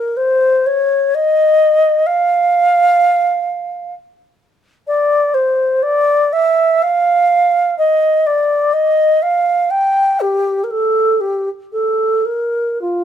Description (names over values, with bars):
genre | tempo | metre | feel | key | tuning
classical, free, expressive piece for unaccompanied alto flute | 63 BPM | 3/4 | uneven beats, rubato | unclear | A4 = 440 Hz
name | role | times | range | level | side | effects
mellow wooden-headed alto flute | solo | 0.0-13.0 s | F4 to G5 | -12 LUFS | equal | none
room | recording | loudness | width
light reverb | none | -12 LUFS | side -9 dB against mid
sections
0.0-13.0 A section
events
none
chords
none